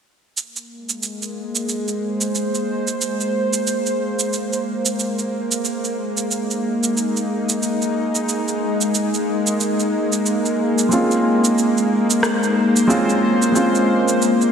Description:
organic downtempo; 91 BPM; 4/4; swing 59% on 16ths; Bb minor; A4 = 441 Hz
bowed-like drone; sustained chords; 0.8-14.5 s; Ab3 to C5; -19 LUFS; equal; built-in reverb
electronic cabasa and rim click; drums; 0.4-14.5 s; -23 LUFS; right 3 dB; gated reverb
felt-muted upright piano; accompaniment; 10.9-14.5 s; Ab3 to F4; -20 LUFS; right 1 dB; digital delay
wet lush hall reverb, RT60 2.6 s; bright 1980s-style digital production; -17 LUFS; side -7 dB against mid
0.4-14.5 A section
0.4 Bbsus2; 5.6 Ebsus4; 10.9 Bbm9

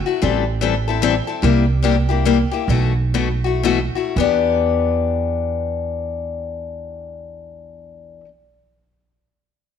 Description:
acoustic string swing (jazz manouche); 105-150 BPM; 3/4; swing 61% on 8ths; E minor; A4 = 440 Hz
picked steel-string acoustic guitar; accompaniment; 0.1-8.3 s; B2 to A4; -20 LUFS; left 8 dB
upright bass; bass; 0.2-8.2 s; A1 to E2; -20 LUFS; right 2 dB
moderate echo chamber reverb, RT60 1.6 s; 1960s-style stereo, faint mains hum; -16 LUFS; side -8 dB against mid
0.0-4.2 A section; 4.2-7.6 B section
slowing down 1.4-4.2
0.2 Am7; 1.4 C7; 2.7 B7sus4; 4.2 Em7

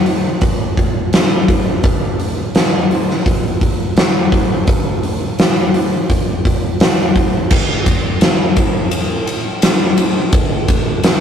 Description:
rock; 85 BPM; 4/4; straight
huge arena drum kit; drums; 0.1-11.2 s; crash cymbal, hi-hat, kick drum, ride cymbal, snare drum; -12 LUFS; equal
light reverb; rough rehearsal-room recording, tube saturation; -12 LUFS; side -8 dB against mid
0.0-7.5 A section; 7.5-11.2 B section

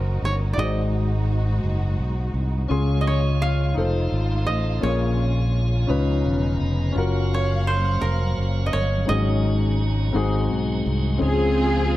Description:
gospel; 56 BPM (dotted quarters); 6/8; straight; Db major; A4 = 441 Hz
koto; melody; 0.0-10.6 s; Bb4 to F5; -28 LUFS; right 2 dB
warm grand piano; accompaniment; 0.0-12.0 s; Ab2 to C6; -26 LUFS; left 3 dB
warm studio string section; sustained chords; 0.0-11.2 s; F3 to F5; -34 LUFS; equal
fingered electric bass; bass; 0.0-12.0 s; Fb1 to Db2; -22 LUFS; equal
tonewheel organ; sustained chords; 2.7-12.0 s; Db3 to Bb5; -33 LUFS; right 2 dB; slow rotary speaker
dark studio string section; melody; 11.2-12.0 s; C4 to Ab4; -21 LUFS; equal
light reverb, studio ambience; dark, warm production; -20 LUFS; side -15 dB against mid
0.0-11.2 A section
tonewheel organ fill 5.9-7.0
0.0 Ebm7; 0.6 Ab7; 2.7 Dbmaj7; 3.8 F7; 4.8 Bbm7; 5.9 Db9; 7.0 Gbmaj7; 9.1 Ab7sus4; 10.1 Ab7; 11.2 Dbmaj7

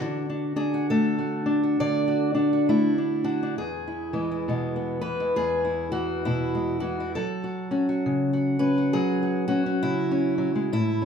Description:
folk, solo fingerstyle acoustic guitar; 67 BPM; 4/4; swing 62% on 8ths; A4 = 441 Hz
fingerpicked steel-string acoustic guitar; solo; 0.0-11.1 s; E2 to D5; -23 LUFS; equal
moderate large studio reverb, RT60 1.4 s; band playing live in one room; -23 LUFS; side -7 dB against mid
0.0-11.1 A section
0.0 Dadd9; 3.6 E; 7.2 F#m

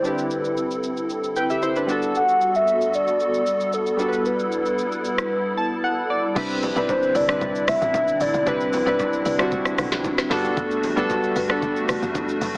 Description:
amapiano; 114 BPM; 4/4; straight; C lydian; A4 = 438 Hz
hollow clarinet-like synth lead; melody; 0.0-9.5 s; A4 to F#5; -22 LUFS; equal; chorus, digital delay
warm analog keys; accompaniment; 0.0-12.6 s; G3 to A5; -24 LUFS; equal; chorus
hollow soft pad; sustained chords; 0.0-12.6 s; D3 to A4; -27 LUFS; equal; ensemble chorus
smooth R&B drum kit; drums; 0.0-12.6 s; crash cymbal, hi-hat, kick drum, rim click, shaker, snare drum; -28 LUFS; equal
deep log drum bass; bass; 6.4-12.6 s; F#1 to C2; -33 LUFS; equal
congas and bongos; percussion; 6.4-12.6 s; -33 LUFS; equal
marimba with medium mallets; stabs; 6.8-11.6 s; E4 to D5; -29 LUFS; left 1 dB; digital delay
moderate digital room reverb, RT60 1.1 s, digital ambience; heavily compressed radio sound, multiband compression, AM radio sound; -19 LUFS; side -26 dB against mid
0.0-6.4 A section; 6.4-12.6 B section
drums muted 5.3-6.4; synth keys fill 5.3-6.4; drop 6.4-12.6
0.0 Cmaj9; 1.9 Gmaj9; 6.4 Cmaj9; 10.3 Gmaj9

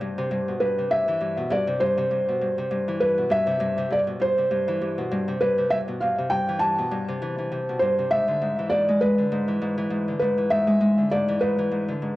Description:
folktronica; 100 BPM; 4/4; swing 56% on 16ths; A minor; A4 = 439 Hz
felt-muted upright piano; melody; 0.0-12.2 s; B4 to A5; -23 LUFS; equal; cassette tape, analog delay
Celtic harp; arpeggios; 0.0-12.2 s; G2 to G#3; -25 LUFS; left 1 dB; cassette tape
wet studio reverb, RT60 0.5 s; home recording on cassette; -21 LUFS; side -17 dB against mid
0.0-12.2 A section
0.0 Am9 (rootless); 8.1 E7

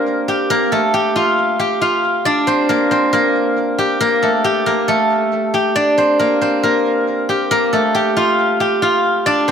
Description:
hip hop; 137 BPM; 4/4; half-time; A4 = 440 Hz
steel-string zither; solo; 0.0-9.5 s; A3 to G5; -13 LUFS; equal
moderate lush hall reverb, RT60 2.7 s; -13 LUFS; side -7 dB against mid
0.0-9.3 A section
0.0 Bb69; 0.5 Bb5; 5.8 Bb69; 7.5 Bb5

